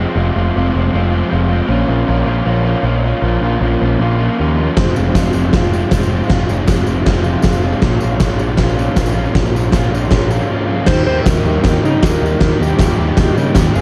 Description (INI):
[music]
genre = garage rock duo or trio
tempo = 157 BPM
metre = 4/4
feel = straight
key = unclear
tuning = A4 = 440 Hz
[part]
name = crunchy overdriven guitar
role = riff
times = 0.0-13.8 s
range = F2 to Ab4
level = -20 LUFS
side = equal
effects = none
[part]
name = growling picked electric bass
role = bass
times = 0.0-13.8 s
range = F1 to Db3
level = -19 LUFS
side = equal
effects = overdrive
[part]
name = oversized low-tuned drum kit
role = drums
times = 4.8-13.6 s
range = crash cymbal, kick drum, snare drum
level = -17 LUFS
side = equal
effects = none
[part]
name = tambourine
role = percussion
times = 5.0-13.8 s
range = none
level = -40 LUFS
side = equal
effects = none
[part]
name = clean lap steel guitar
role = melody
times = 10.9-13.7 s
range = Eb4 to C5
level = -23 LUFS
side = equal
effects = none
[sound]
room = light reverb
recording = cassette tape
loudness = -15 LUFS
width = mono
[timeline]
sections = 0.0-10.9 A section; 10.9-13.8 B section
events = none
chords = 0.0 Fm; 1.7 Bbm; 4.8 Fm; 7.8 Bbm; 10.9 Eb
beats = | 0.15 0.54 0.92 1.31 | 1.69 2.08 2.46 2.84 | 3.23 3.61 4.00 4.38 | 4.76 5.15 5.53 5.91 | 6.30 6.68 7.06 7.45 | 7.83 8.21 8.59 8.98 | 9.36 9.74 10.12 10.51 | 10.89 11.27 11.65 12.03 | 12.41 12.79 13.18 13.56